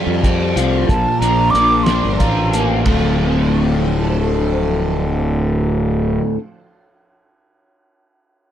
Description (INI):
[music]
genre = psychedelic rock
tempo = 61 BPM (dotted quarters)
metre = 6/8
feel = straight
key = D minor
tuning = A4 = 440 Hz
[part]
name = phased string machine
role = sustained chords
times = 0.0-6.2 s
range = F3 to C5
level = -27 LUFS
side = right 4 dB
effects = ensemble chorus, phaser
[part]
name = overdriven semi-hollow guitar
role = riff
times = 0.0-6.4 s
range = D2 to F4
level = -18 LUFS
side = left 2 dB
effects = flanger
[part]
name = fuzz fingered electric bass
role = bass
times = 0.1-6.2 s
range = D1 to F2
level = -19 LUFS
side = equal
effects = overdrive
[part]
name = cloth-damped thuddy drum kit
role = drums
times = 0.2-3.0 s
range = hi-hat, kick drum, ride cymbal, snare drum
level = -20 LUFS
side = equal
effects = none
[part]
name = mellow concert flute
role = melody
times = 0.9-2.8 s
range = A5 to D6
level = -18 LUFS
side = right 2 dB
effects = analog delay
[sound]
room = light reverb, small room ambience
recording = none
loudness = -14 LUFS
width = side -10 dB against mid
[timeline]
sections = 0.0-2.9 A section; 2.9-6.8 B section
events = flute solo 0.0-2.9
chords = 0.0 Fadd9; 0.9 Bbadd9; 2.9 Dm7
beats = | 0.88 1.87 | 2.86 3.85 | 4.84 5.83